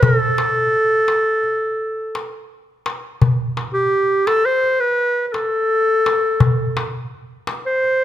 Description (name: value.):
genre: Turkish makam ensemble.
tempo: 169 BPM (eighths).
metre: 9/8.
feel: straight.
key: unclear.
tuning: A4 = 439 Hz.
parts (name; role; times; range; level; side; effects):
clear clarinet; melody; 0.0-8.0 s; G4 to C5; -16 LUFS; equal; none.
oud; second line; 0.0-2.5 s; A4; -26 LUFS; right 5 dB; none.
darbuka; percussion; 0.0-7.9 s; none; -19 LUFS; left 2 dB; none.
room: moderate recital hall reverb, RT60 1.6 s.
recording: close, detailed microphones.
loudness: -16 LUFS.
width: side -12 dB against mid.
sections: 0.0-3.2 A section; 3.2-8.0 B section.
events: none.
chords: none.